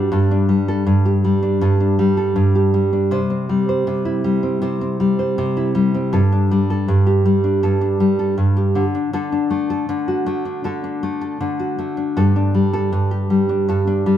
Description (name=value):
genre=pop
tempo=80 BPM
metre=4/4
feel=straight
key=unclear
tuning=A4 = 440 Hz
part: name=nylon-string guitar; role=solo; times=0.0-14.2 s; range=G2 to C5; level=-16 LUFS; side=equal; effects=none
room=moderate studio reverb, RT60 0.9 s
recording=band playing live in one room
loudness=-16 LUFS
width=side -10 dB against mid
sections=0.1-14.2 A section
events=none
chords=0.1 Gsus2; 3.1 C; 6.1 Gsus2; 8.8 D; 12.2 Gsus2